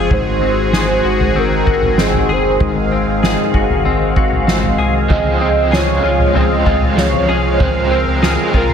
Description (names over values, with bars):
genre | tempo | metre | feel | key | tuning
dream pop | 96 BPM | 4/4 | straight | Db major | A4 = 440 Hz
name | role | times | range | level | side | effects
phased analog pad | sustained chords | 0.0-8.7 s | Eb3 to F5 | -18 LUFS | equal | phaser, chorus
direct-recorded clean electric guitar | arpeggios | 0.0-8.7 s | Ab2 to Ab4 | -20 LUFS | left 5 dB | ensemble chorus, ping-pong delay
sub bass with octave | bass | 0.0-8.7 s | Gb1 to Db2 | -20 LUFS | equal | none
warm velvety synth lead | melody | 0.1-8.7 s | Ab4 to Eb5 | -19 LUFS | right 1 dB | chorus, ping-pong delay
soft-mallet drum kit | drums | 0.1-8.7 s | kick drum, snare drum, toms | -18 LUFS | equal | none
crunchy overdriven guitar | accompaniment | 5.1-8.7 s | Db3 to C4 | -20 LUFS | right 4 dB | tremolo, ensemble chorus
room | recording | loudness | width
light reverb, studio ambience | none | -12 LUFS | side -7 dB against mid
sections
0.0-8.7 A section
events
none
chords
0.1 Ab7; 5.1 Dbmaj7